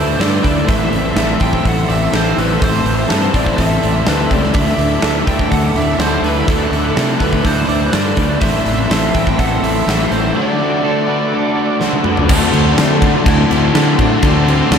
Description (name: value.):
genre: rock, shoegaze and dream pop.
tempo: 124 BPM.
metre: 4/4.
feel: straight.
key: D mixolydian.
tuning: A4 = 440 Hz.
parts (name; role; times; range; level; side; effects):
biting lead guitar; melody; 0.0-14.8 s; A3 to G5; -21 LUFS; left 1 dB; overdrive, diffuse ambient delay.
brassy analog pad; sustained chords; 0.0-14.8 s; A4 to F#6; -24 LUFS; right 1 dB; chorus, tremolo.
twelve-string electric guitar; arpeggios; 0.0-12.3 s; G4 to D5; -25 LUFS; right 5 dB; wide subtle chorus, diffuse ambient delay.
crunchy overdriven guitar; riff; 0.0-14.8 s; A2 to F#4; -20 LUFS; left 8 dB; ensemble chorus.
crunchy overdriven guitar; riff; 0.0-14.8 s; A2 to A4; -20 LUFS; right 7 dB; reverse reverb.
fuzz fingered electric bass; bass; 0.0-14.8 s; A1 to D3; -19 LUFS; equal; overdrive.
huge arena drum kit; drums; 0.2-14.8 s; crash cymbal, hi-hat, kick drum, snare drum, toms; -18 LUFS; equal; none.
overdriven semi-hollow guitar; riff; 12.3-14.8 s; D3 to D4; -19 LUFS; left 2 dB; lush chorus.
room: wet huge ambient reverb, RT60 7.8 s.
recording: dreamy mix soaked in reverb.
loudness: -12 LUFS.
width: side -7 dB against mid.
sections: 0.0-12.3 A section; 12.3-14.8 B section.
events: drum fill 11.8-12.3.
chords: 0.0 Dsus2; 0.7 Am; 4.5 Dsus2; 8.4 Am; 10.4 D; 12.3 D5.